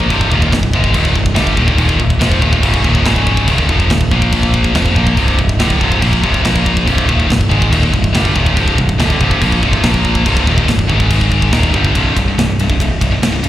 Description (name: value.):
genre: heavy metal.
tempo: 142 BPM.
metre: 4/4.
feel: straight.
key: C phrygian.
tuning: A4 = 439 Hz.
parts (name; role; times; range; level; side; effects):
high-gain distorted guitar; riff; 0.0-13.5 s; C2 to Bb3; -14 LUFS; equal; distortion.
growling picked electric bass; bass; 0.0-13.5 s; C1 to Bb1; -15 LUFS; equal; overdrive.
tight metal drum kit; drums; 0.0-13.5 s; crash cymbal, kick drum, ride cymbal, snare drum; -16 LUFS; equal; none.
room: little or no reverb.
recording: live gig heard through the venue's PA, recital hall reverb.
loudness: -10 LUFS.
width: side -13 dB against mid.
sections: 0.0-12.0 A section; 12.0-13.5 B section.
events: none.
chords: 0.1 Cm; 1.8 Eb5; 3.1 Db5; 3.5 Eb5; 4.1 Bb5; 4.8 Fsus4; 5.2 C5; 6.4 Bb5; 6.9 Cm; 9.8 Bb5; 10.3 Cm; 10.9 Ab5; 11.5 Ebmaj7; 12.0 C5.